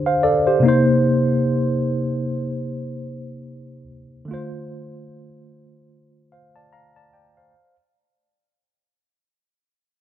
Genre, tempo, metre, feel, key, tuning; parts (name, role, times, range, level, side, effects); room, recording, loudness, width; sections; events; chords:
R&B; 74 BPM; 4/4; swing 58% on 16ths; A4 = 444 Hz
mellow tine electric piano; accompaniment; 0.0-7.8 s; C3 to Bb5; -18 LUFS; equal; medium stereo tremolo
moderate lush hall reverb, RT60 2.5 s; -17 LUFS; side -11 dB against mid
0.0-7.5 A section
fade-out 0.0-7.5
0.0 D7sus4; 0.6 Cm7; 4.3 Dm7